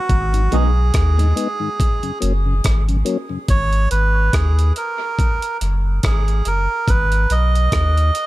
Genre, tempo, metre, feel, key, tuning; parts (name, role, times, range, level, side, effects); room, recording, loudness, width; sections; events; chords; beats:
dub reggae; 71 BPM; 4/4; swing 58% on 16ths; G# minor; A4 = 440 Hz
melodica; melody; 0.0-8.3 s; F#4 to D#5; -22 LUFS; right 3 dB; dub echo
warm sub bass; bass; 0.1-8.1 s; F#1 to D#2; -16 LUFS; equal
breakbeat sampler-style drum kit; drums; 0.1-8.3 s; hi-hat, kick drum, rim click; -20 LUFS; equal
mellow tonewheel organ; accompaniment; 0.3-3.4 s; F#2 to D#4; -24 LUFS; left 4 dB; slow rotary speaker
electric guitar at the edge of break-up; accompaniment; 0.5-0.7 s; G#3 to G#4; -29 LUFS; right 2 dB; dub echo
light reverb; -15 LUFS; side -17 dB against mid
0.0-8.3 A section
0.1 G#m; 1.8 F#; 3.5 G#5; 5.2 F#add9; 6.9 G#m
| 0.10 0.95 1.80 2.65 | 3.49 4.34 5.18 6.03 | 6.88 7.72